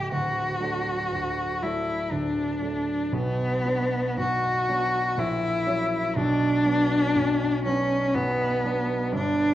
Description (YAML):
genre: classical, romantic duo for cello and grand piano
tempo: 60 BPM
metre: 3/4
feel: rubato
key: unclear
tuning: A4 = 440 Hz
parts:
  - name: rich cello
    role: melody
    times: 0.0-9.5 s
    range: B3 to G4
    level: -24 LUFS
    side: left 1 dB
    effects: none
  - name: warm grand piano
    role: accompaniment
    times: 0.0-9.5 s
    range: C#1 to E4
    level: -29 LUFS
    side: right 2 dB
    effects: none
room: moderate recital hall reverb, RT60 1.4 s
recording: worn, warbling old tape, cassette tape, warbly pitch drift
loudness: -23 LUFS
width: side -13 dB against mid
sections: 0.0-9.5 A section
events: none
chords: 0.1 D; 3.1 Bm; 5.2 F#/A#; 6.2 Bm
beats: | 0.12 1.14 2.12 | 3.12 4.18 5.19 | 6.18 7.16 8.15 | 9.14